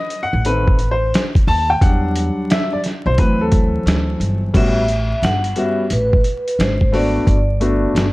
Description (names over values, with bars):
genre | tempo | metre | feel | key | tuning
hip hop, jazz-hop | 88 BPM | 4/4 | swing 65% on 16ths | unclear | A4 = 440 Hz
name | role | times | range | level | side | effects
clear upright piano | accompaniment | 0.0-8.0 s | D#3 to A5 | -19 LUFS | left 1 dB | none
dusty soul sampler-style drum kit | drums | 0.1-8.1 s | crash cymbal, hi-hat, kick drum, snare drum | -17 LUFS | equal | none
upright bass | bass | 0.3-8.1 s | G1 to E2 | -19 LUFS | equal | none
vibraphone with hard mallets | melody | 4.6-8.1 s | B4 to F#5 | -21 LUFS | right 1 dB | none
room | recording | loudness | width
light reverb | dark, warm production, vinyl crackle | -14 LUFS | side -20 dB against mid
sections
0.0-4.5 A section; 4.5-8.1 B section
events
upright piano solo 0.0-4.5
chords
0.0 B7b9; 1.8 Em9; 3.2 D9; 4.5 A13; 6.6 Ab; 7.3 Gmaj9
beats
0.45 1.13 | 1.81 2.50 3.18 3.86 | 4.54 5.22 5.90 6.59 | 7.27 7.95